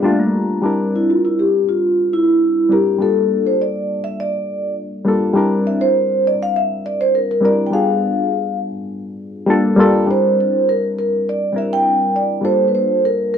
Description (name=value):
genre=soul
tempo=102 BPM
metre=4/4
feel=straight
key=unclear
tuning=A4 = 444 Hz
part: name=vibraphone with soft mallets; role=melody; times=0.0-13.4 s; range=E4 to G5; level=-16 LUFS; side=right 1 dB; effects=none
part: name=barky reed electric piano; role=accompaniment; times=0.0-13.4 s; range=G3 to Bb5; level=-18 LUFS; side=left 2 dB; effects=overdrive, phaser
room=light reverb, studio ambience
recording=dry, close 1970s-style studio recording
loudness=-14 LUFS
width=side -8 dB against mid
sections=0.6-10.1 A section; 10.1-13.4 B section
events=reed electric piano fill 0.0-0.6; vibraphone solo 0.6-10.1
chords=0.1 Gm9; 0.6 C9; 3.0 Gm9; 5.4 C9; 7.7 G7b9; 9.5 Gm9; 10.1 C9; 12.4 Gm9